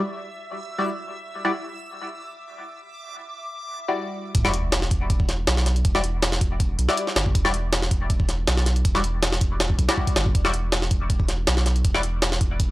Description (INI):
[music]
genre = drum and bass, jungle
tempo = 160 BPM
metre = 4/4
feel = straight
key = E minor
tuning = A4 = 442 Hz
[part]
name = backwards swelling texture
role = texture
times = 0.0-4.4 s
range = E5 to E6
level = -37 LUFS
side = right 1 dB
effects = built-in reverb
[part]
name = band-passed chord stab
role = stabs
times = 0.8-1.5, 3.9-12.0 s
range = G3 to D5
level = -27 LUFS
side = left 2 dB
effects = phaser, dub echo
[part]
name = saturated sub bass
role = bass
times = 4.3-12.7 s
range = E1 to B1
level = -24 LUFS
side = equal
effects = tube saturation
[part]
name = jungle sampler-style drum kit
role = drums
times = 4.3-12.7 s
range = hi-hat, kick drum, snare drum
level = -22 LUFS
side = equal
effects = none
[part]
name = sub drop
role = sound effects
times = 4.3-5.8 s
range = none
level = -33 LUFS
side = equal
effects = none
[sound]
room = little or no reverb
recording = dry, gritty hardware recording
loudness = -20 LUFS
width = side -18 dB against mid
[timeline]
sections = 0.0-4.3 A section; 4.3-12.7 B section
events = drop 4.3-12.7; impact 4.3-5.8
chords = 0.0 Em9